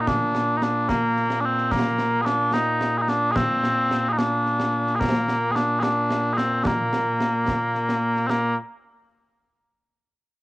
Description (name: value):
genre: scottish traditional, Scottish pipe music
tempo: 73 BPM (dotted quarters)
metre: 6/8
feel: straight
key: Bb major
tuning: A4 = 440 Hz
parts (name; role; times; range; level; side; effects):
- mellow small bagpipes; melody; 0.0-8.6 s; Bb2 to Ab4; -21 LUFS; equal; cassette tape
- concert snare drum and concert bass drum; drums; 0.1-8.6 s; none; -28 LUFS; equal; none
room: light reverb, small room ambience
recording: home recording on cassette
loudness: -20 LUFS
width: side -20 dB against mid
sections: 0.0-8.3 A section; 8.3-9.9 B section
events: none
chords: none